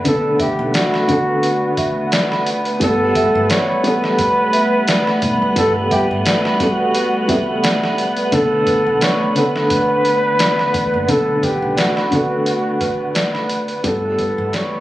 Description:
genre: trip hop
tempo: 87 BPM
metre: 4/4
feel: swing 54% on 16ths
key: B minor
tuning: A4 = 439 Hz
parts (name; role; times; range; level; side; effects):
- felt-muted upright piano; accompaniment; 0.0-14.8 s; D3 to A4; -22 LUFS; left 1 dB; tremolo, vintage 12-bit sampler grit
- dark studio string section; sustained chords; 0.0-14.8 s; D3 to B3; -23 LUFS; left 1 dB; none
- celesta; arpeggios; 0.0-14.8 s; B4 to B5; -23 LUFS; right 1 dB; tape echo
- upright bass; bass; 0.0-14.5 s; F#1 to E2; -24 LUFS; equal; none
- wind-like tuned noise texture; texture; 0.0-14.8 s; F#5; -27 LUFS; right 4 dB; built-in reverb
- trumpet with bucket mute; melody; 0.1-14.8 s; F#4 to C#5; -19 LUFS; equal; tape echo
- trip hop sampler-style drum kit; drums; 0.1-14.7 s; hi-hat, kick drum, snare drum; -21 LUFS; equal; none
room: light reverb, studio reverb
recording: recorded on a phone in the room, compression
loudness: -14 LUFS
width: side -15 dB against mid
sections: 0.0-14.8 A section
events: fade-out 12.0-14.8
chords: 0.0 Bm7; 2.8 Gadd9; 8.3 Bm7; 13.8 Gadd9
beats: | 0.05 0.74 1.43 2.12 | 2.81 3.50 4.19 4.88 | 5.57 6.26 6.95 7.64 | 8.33 9.02 9.71 10.40 | 11.09 11.78 12.46 13.15 | 13.84 14.53

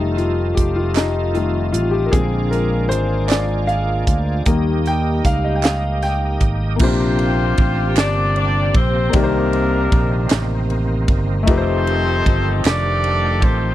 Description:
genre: slow gospel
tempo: 51 BPM (dotted quarters)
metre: 6/8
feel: straight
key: Bb major from 6.8 s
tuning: A4 = 441 Hz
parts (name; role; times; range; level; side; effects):
- warm concert grand piano; accompaniment; 0.0-13.7 s; C3 to G5; -22 LUFS; left 4 dB; none
- bright tonewheel organ; sustained chords; 0.0-13.7 s; C3 to Eb5; -28 LUFS; right 4 dB; slow rotary speaker, overdrive, chorus vibrato
- mellow French horn section; sustained chords; 0.0-6.8 s; C3 to G4; -29 LUFS; right 2 dB; none
- fingered electric bass; bass; 0.0-13.7 s; F1 to Eb2; -20 LUFS; right 1 dB; none
- crisp fusion drum kit; drums; 0.2-13.6 s; crash cymbal, hi-hat, kick drum, ride cymbal, snare drum; -18 LUFS; right 1 dB; none
- group handclap; percussion; 0.9-13.0 s; none; -28 LUFS; right 20 dB; none
- warm horn section; melody; 6.8-13.7 s; Bb3 to D5; -21 LUFS; left 2 dB; none
room: little or no reverb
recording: dry, close 1970s-style studio recording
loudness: -15 LUFS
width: side -14 dB against mid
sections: 0.0-6.8 A section; 6.8-13.7 B section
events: grand piano solo 0.0-6.8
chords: 0.0 F7; 2.1 Bb7; 4.5 Eb; 6.8 Bb69; 9.1 Cm9; 11.5 F9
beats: 0.96 | 2.13 3.30 | 4.47 5.63 | 6.80 7.97 | 9.14 10.31 | 11.47 12.64

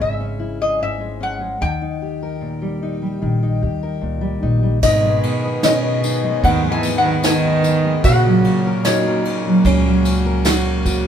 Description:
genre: acoustic folk duo or small band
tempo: 75 BPM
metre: 4/4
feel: straight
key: G# minor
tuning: A4 = 440 Hz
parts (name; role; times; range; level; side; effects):
- lap resonator guitar; melody; 0.0-10.0 s; C#5 to G#5; -21 LUFS; left 2 dB; none
- fingerpicked steel-string acoustic guitar; accompaniment; 0.0-11.1 s; G#2 to B4; -20 LUFS; left 1 dB; none
- upright bass; bass; 0.0-11.1 s; G#1 to D#2; -22 LUFS; equal; none
- warm cello; second line; 4.8-10.0 s; A#2 to E3; -22 LUFS; right 4 dB; none
- hand-pumped harmonium; sustained chords; 4.8-11.1 s; C#3 to G#4; -28 LUFS; left 2 dB; none
- dark upright piano; arpeggios; 4.8-11.1 s; B3 to F#4; -24 LUFS; right 5 dB; none
- soft brush drum kit; drums; 4.8-11.0 s; crash cymbal, kick drum, ride cymbal, snare drum; -23 LUFS; equal; none
- tambourine; percussion; 4.8-11.0 s; none; -29 LUFS; left 3 dB; none
room: wet studio reverb, RT60 0.7 s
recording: band playing live in one room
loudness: -15 LUFS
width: side -8 dB against mid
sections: 0.0-4.8 A section; 4.8-11.1 B section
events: none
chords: 0.0 C#m; 1.6 D#; 4.8 G#m; 8.0 F#/A#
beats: 0.01 0.81 | 1.62 2.42 3.22 4.02 | 4.83 5.63 6.43 7.24 | 8.04 8.85 9.65 10.46

